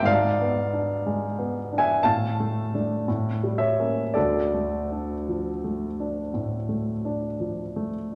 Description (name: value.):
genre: classical, romantic nocturne for solo piano.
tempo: 52-63 BPM.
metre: 4/4.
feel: rubato.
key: unclear.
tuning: A4 = 440 Hz.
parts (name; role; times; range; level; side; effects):
warm concert grand piano; solo; 0.0-8.2 s; D2 to C6; -26 LUFS; equal; none.
room: wet recital hall reverb, RT60 1.7 s.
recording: none.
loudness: -26 LUFS.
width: mono.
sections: 0.0-8.2 A section.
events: none.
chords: 0.1 G#dim7; 2.0 Dm/A; 3.1 A7b9; 4.2 Dm.